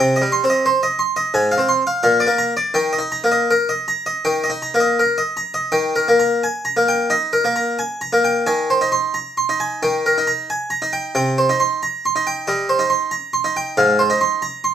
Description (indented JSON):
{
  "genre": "classical, baroque-style suite movement for harpsichord",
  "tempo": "79-93 BPM",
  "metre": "4/4",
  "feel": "rubato",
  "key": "Eb major",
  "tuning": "A4 = 444 Hz",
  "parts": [
    { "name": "harpsichord", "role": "solo", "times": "0.0-14.7 s", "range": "Ab2 to C6", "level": "-16 LUFS", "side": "equal", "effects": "none" }
  ],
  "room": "light reverb",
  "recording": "none",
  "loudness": "-16 LUFS",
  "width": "side -9 dB against mid",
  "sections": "0.0-5.7 A section; 5.7-14.7 B section",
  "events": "none",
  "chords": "0.0 Cm; 1.3 Fm/Ab; 2.0 Bb; 2.8 Eb; 8.5 Ab/Eb; 9.8 Eb; 11.1 Cm; 13.8 Fm7/Ab"
}